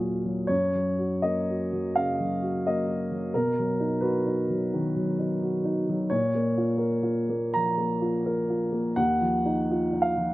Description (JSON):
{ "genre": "neoclassical minimalist piano", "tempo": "85 BPM", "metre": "4/4", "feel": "rubato", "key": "Bb phrygian", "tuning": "A4 = 440 Hz", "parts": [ { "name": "dark baby grand piano", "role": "solo", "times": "0.0-10.3 s", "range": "Eb2 to Bb5", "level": "-24 LUFS", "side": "equal", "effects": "none" } ], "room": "light reverb", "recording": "recorded outdoors, with no room sound", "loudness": "-24 LUFS", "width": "side -17 dB against mid", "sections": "0.0-10.3 A section", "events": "none", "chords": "0.0 Ebmadd9; 0.5 Gb; 3.3 B; 6.1 Bbm; 9.0 Ebmadd9" }